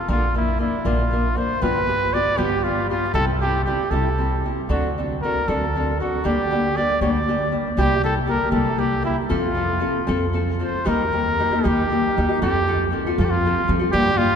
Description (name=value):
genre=mexican folk, mariachi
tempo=78 BPM (dotted quarters)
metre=6/8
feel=rubato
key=F major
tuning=A4 = 440 Hz
part: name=warm trumpet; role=melody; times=0.0-14.4 s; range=E4 to D5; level=-22 LUFS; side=right 1 dB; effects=none
part: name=nylon-string guitar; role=accompaniment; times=0.1-14.3 s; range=G2 to Bb4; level=-23 LUFS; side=left 2 dB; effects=none
part: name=upright bass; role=bass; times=0.1-14.4 s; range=G1 to F3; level=-24 LUFS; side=right 1 dB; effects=none
room=wet cathedral reverb, RT60 5.1 s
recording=recorded in a church or concert hall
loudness=-18 LUFS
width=side -7 dB against mid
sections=0.0-10.9 A section; 10.9-14.4 B section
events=none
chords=0.1 Bb; 1.6 G7; 3.1 C; 4.7 D7; 6.3 Gm/D; 7.8 C7; 9.3 F; 10.9 Eb; 12.4 F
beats=| 0.08 0.84 | 1.61 2.37 | 3.13 3.91 | 4.70 5.48 | 6.25 7.01 | 7.78 8.53 | 9.30 10.08 | 10.87 11.65 | 12.42 13.19 | 13.94